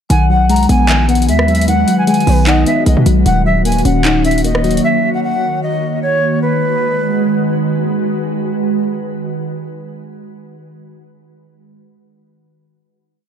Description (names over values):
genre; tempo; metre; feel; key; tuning
hip hop, trap; 152 BPM; 4/4; half-time; B major; A4 = 440 Hz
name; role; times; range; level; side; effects
reedy jazz flute; melody; 0.1-7.6 s; B4 to A#5; -18 LUFS; equal; none
gliding portamento lead; second line; 0.1-2.8 s; B4 to F#5; -23 LUFS; left 2 dB; chorus, phaser, digital delay
soft round pluck; accompaniment; 0.1-5.6 s; D#3 to D#4; -16 LUFS; left 4 dB; chorus
glassy FM pad; sustained chords; 0.3-10.3 s; D#3 to C#5; -18 LUFS; right 1 dB; ensemble chorus, built-in reverb
hard-hitting 808-style bass; bass; 0.1-4.8 s; D#1 to B2; -14 LUFS; right 1 dB; none
trap drum kit; drums; 0.1-4.8 s; handclaps, hi-hat, rim click; -21 LUFS; equal; overdrive
room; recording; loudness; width
little or no reverb; dark, warm production; -11 LUFS; side -8 dB against mid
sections
0.1-6.4 hook; 6.4-9.6 final chord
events
none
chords
0.1 B6; 3.3 D#m7; 6.4 B6